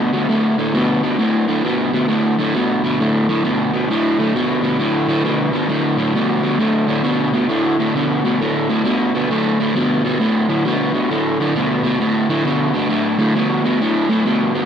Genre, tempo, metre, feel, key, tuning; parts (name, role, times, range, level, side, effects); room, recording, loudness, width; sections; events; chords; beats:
rock; 133 BPM; 4/4; swing 64% on 8ths; A4 = 440 Hz
crunchy overdriven guitar; solo; 0.0-14.7 s; D2 to B2; -15 LUFS; equal; slapback echo
wet lush hall reverb, RT60 2.2 s; big arena sound; -15 LUFS; side -8 dB against mid
0.0-14.7 A section
0.0 D5
0.29 0.74 | 1.20 1.65 2.10 2.55 | 3.00 3.45 3.90 4.35 | 4.80 5.25 5.70 6.15 | 6.60 7.05 7.50 7.96 | 8.40 8.86 9.31 9.76 | 10.21 10.66 11.11 11.56 | 12.01 12.46 12.91 13.36 | 13.81 14.26